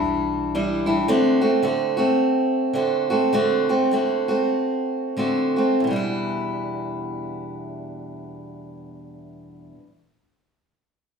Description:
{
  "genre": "acoustic folk duo or small band",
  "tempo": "88-110 BPM",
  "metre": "4/4",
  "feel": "swing 59% on 8ths",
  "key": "E minor",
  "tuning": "A4 = 440 Hz",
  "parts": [
    { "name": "picked steel-string acoustic guitar", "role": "accompaniment", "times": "0.0-9.9 s", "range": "E2 to F#4", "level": "-20 LUFS", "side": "right 1 dB", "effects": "none" },
    { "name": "upright bass", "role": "bass", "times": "0.0-1.0 s", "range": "B1", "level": "-38 LUFS", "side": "equal", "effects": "none" }
  ],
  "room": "wet large studio reverb, RT60 0.8 s",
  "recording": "heard from further back in the room",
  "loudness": "-19 LUFS",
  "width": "side -6 dB against mid",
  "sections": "0.0-5.8 A section; 5.8-11.2 B section",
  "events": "slowing down 1.1-5.8",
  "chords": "0.0 Em7; 1.1 D7; 5.8 Em7"
}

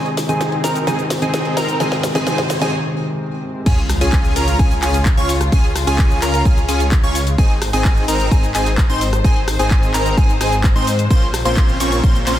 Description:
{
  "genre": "EDM, festival progressive house",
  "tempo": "129 BPM",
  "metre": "4/4",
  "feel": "straight",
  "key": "Db major",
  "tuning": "A4 = 440 Hz",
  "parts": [
    { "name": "felt-muted upright piano", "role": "accompaniment", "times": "0.0-3.7 s", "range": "C3 to C4", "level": "-22 LUFS", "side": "equal", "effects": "sidechain pumping, digital delay" },
    { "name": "dark chamber string section", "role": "sustained chords", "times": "0.0-12.4 s", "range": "Ab2 to C5", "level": "-28 LUFS", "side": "left 5 dB", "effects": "sidechain pumping" },
    { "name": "plucky unison lead", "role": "arpeggios", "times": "0.0-12.4 s", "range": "Ab5 to Db6", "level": "-24 LUFS", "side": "right 1 dB", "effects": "sidechain pumping, digital delay" },
    { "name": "supersaw chords", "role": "riff", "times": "0.0-12.4 s", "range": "Bb3 to Db5", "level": "-22 LUFS", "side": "equal", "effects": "sidechain pumping, low-pass filter, digital delay" },
    { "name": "riser and impact", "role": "sound effects", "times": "0.2-5.5 s", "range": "none", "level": "-27 LUFS", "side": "equal", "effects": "none" },
    { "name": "house drum kit", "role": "drums", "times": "0.1-12.4 s", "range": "crash cymbal, handclaps, hi-hat, rim click, shaker, snare drum", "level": "-24 LUFS", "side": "left 1 dB", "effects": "high-pass filter on hats, high-pass filter on toms, high-pass filter on snare, high-pass filter on perc, high-pass filter on cymbals, high-pass filter on room" },
    { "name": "wide detuned saw bass", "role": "bass", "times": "3.7-12.4 s", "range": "Ab1 to Ab2", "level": "-20 LUFS", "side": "equal", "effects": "chorus, sidechain pumping" },
    { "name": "electronic kick drum", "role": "drums", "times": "3.7-12.1 s", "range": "none", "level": "-14 LUFS", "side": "equal", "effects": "none" }
  ],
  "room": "light reverb, digital ambience",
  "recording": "dense, heavily limited modern master",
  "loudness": "-14 LUFS",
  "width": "side -12 dB against mid",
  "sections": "0.0-3.7 A section; 3.7-12.4 B section",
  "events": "build-up 0.0-3.7; drum fill 0.0-2.7; filter sweep on supersaw synth 0.0-3.7; filter sweep on digital synth lead 0.0-3.7; break 2.7-3.7; drop 3.7-12.4; impact 3.7-5.5",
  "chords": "0.0 Ab; 3.7 Db; 7.4 Ab; 11.1 Bbmadd9"
}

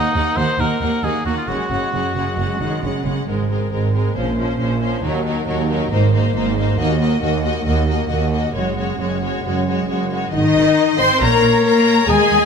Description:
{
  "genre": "cinematic, heroic adventure film score",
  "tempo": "136 BPM",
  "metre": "4/4",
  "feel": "straight",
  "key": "Ab mixolydian",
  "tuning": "A4 = 439 Hz",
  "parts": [
    { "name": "rich symphonic violin section", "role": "melody", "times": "0.0-12.5 s", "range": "Bb4 to C6", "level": "-25 LUFS", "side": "left 6 dB", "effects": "none" },
    { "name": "clear oboe", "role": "second line", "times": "0.0-3.0, 11.2-12.5 s", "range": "Eb4 to Eb5", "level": "-23 LUFS", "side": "equal", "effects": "none" },
    { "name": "rich symphonic violin section", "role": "second line", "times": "0.0-12.5 s", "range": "C4 to C6", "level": "-24 LUFS", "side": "left 4 dB", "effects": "none" },
    { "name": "rich symphonic viola section", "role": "accompaniment", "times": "0.0-12.5 s", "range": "F3 to C5", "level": "-24 LUFS", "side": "right 2 dB", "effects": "none" },
    { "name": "warm symphonic cello section", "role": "bass", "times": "0.1-12.5 s", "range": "Eb2 to C4", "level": "-21 LUFS", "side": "right 2 dB", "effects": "none" },
    { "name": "clear symphonic double bass section", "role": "bass", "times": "0.2-12.4 s", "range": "Gb1 to Eb2", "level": "-23 LUFS", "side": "right 4 dB", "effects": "none" },
    { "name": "mellow French horn section", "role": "sustained chords", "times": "10.3-12.5 s", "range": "Eb4 to C5", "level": "-17 LUFS", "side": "left 8 dB", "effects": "none" }
  ],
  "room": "moderate scoring stage reverb, RT60 1.6 s",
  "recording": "none",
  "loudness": "-16 LUFS",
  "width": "side -6 dB against mid",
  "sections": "0.0-3.3 A section; 3.3-10.3 B section; 10.3-12.5 C section",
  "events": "none",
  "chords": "0.0 Ebm; 1.5 Gbsus2; 3.3 Abadd9; 4.2 Bbmadd9; 5.0 Ebm; 5.9 Abadd9; 6.8 Ebm; 8.5 Gbsus2; 10.3 Ab; 11.2 Bbm"
}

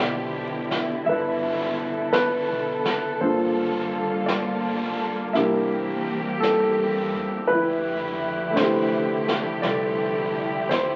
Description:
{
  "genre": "jazz ballad",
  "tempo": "56 BPM",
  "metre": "4/4",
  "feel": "swing 69% on 8ths",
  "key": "C major",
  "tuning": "A4 = 440 Hz",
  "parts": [
    { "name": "clear grand piano", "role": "accompaniment", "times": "0.0-11.0 s", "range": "B2 to E5", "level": "-26 LUFS", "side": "equal", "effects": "none" },
    { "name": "warm symphonic string section", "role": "sustained chords", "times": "0.0-11.0 s", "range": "B2 to A4", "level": "-29 LUFS", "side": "equal", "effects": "none" },
    { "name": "upright bass", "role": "bass", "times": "0.0-11.0 s", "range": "F#1 to C3", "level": "-41 LUFS", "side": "equal", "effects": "none" },
    { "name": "vintage brush drum kit", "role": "drums", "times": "0.7-11.0 s", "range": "brushed snare drum, hi-hat, snare drum", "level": "-33 LUFS", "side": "equal", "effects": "none" }
  ],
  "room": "wet large studio reverb, RT60 0.8 s",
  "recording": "very old 78 rpm record, vinyl crackle, nothing above 7.8 kHz",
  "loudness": "-24 LUFS",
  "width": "mono",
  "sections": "0.0-11.0 A section",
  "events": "none",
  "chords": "0.0 Cmaj9; 3.2 Gm9; 5.4 C7; 7.5 Fmaj13"
}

